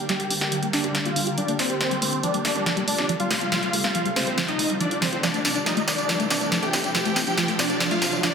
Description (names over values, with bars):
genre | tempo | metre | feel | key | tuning
uplifting trance | 140 BPM | 4/4 | straight | unclear | A4 = 438 Hz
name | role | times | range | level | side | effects
tight sequenced synth | arpeggios | 0.0-8.3 s | F3 to G4 | -29 LUFS | left 1 dB | chorus, phaser, ping-pong delay
tight sequencer bass | bass | 0.0-8.2 s | none | barely audible | none | none
riser | sound effects | 0.7-8.3 s | none | -35 LUFS | right 1 dB | none
supersaw chords | melody | 0.1-8.3 s | C4 to G5 | -26 LUFS | equal | phaser, low-pass filter, ping-pong delay
punchy analog drum machine | drums | 0.1-8.3 s | hi-hat, snare drum, tambourine | -24 LUFS | equal | high-pass filter on snare, high-pass filter on hats, high-pass filter on perc, high-pass filter on room
room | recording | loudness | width
wet lush hall reverb, RT60 1.8 s, digital ambience | dense, heavily limited modern master | -21 LUFS | side -6 dB against mid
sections
0.0-8.3 A section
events
build-up 0.0-8.3; drum fill 0.0-8.3; filter sweep on supersaw synth 0.0-8.3; filter sweep on synth arpeggio sound 0.0-8.3; riser 0.7-8.3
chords
0.0 Gm; 1.8 Fadd9; 5.2 Dm7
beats
| 0.09 0.52 0.95 1.38 | 1.80 2.23 2.66 3.09 | 3.52 3.95 4.38 4.80 | 5.23 5.66 6.09 6.52 | 6.95 7.38 7.80 8.23